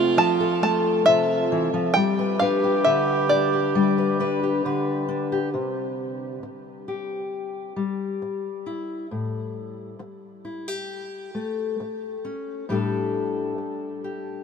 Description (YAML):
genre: acoustic folk duo or small band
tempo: 67 BPM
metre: 4/4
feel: straight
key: C major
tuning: A4 = 440 Hz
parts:
  - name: open-back banjo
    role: melody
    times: 0.0-5.0 s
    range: D5 to A5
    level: -23 LUFS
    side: equal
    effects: none
  - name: dark clarinet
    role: second line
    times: 0.0-5.0 s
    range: F4 to G4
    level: -26 LUFS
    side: right 7 dB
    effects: none
  - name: fingerpicked steel-string acoustic guitar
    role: accompaniment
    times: 0.0-14.4 s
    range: A2 to B4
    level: -24 LUFS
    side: left 3 dB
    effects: none
room: wet huge ambient reverb, RT60 6.4 s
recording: minimal, uncompressed stereo recording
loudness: -22 LUFS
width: side -6 dB against mid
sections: 0.0-5.5 A section; 5.5-14.4 B section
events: none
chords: 0.0 Fmaj7; 2.0 G; 5.5 C5; 9.1 A7(no3); 12.7 Dsus4/A